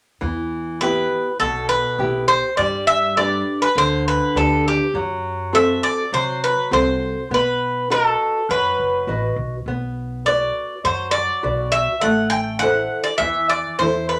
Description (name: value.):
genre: greek folk.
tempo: 102 BPM.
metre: 4/4.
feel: straight.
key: E minor.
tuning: A4 = 440 Hz.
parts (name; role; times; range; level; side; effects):
nylon-string guitar; accompaniment; 0.2-14.2 s; B2 to D#5; -25 LUFS; equal; none.
upright bass; bass; 0.2-14.2 s; F#1 to C3; -30 LUFS; equal; none.
Greek bouzouki; melody; 0.8-14.2 s; G4 to G5; -21 LUFS; equal; none.
room: wet club reverb, RT60 0.6 s.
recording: none.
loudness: -20 LUFS.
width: mono.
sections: 0.2-14.2 A section.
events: none.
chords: 0.2 Em; 2.6 G; 4.9 F#dim; 7.3 B; 9.7 Bm; 12.0 Am.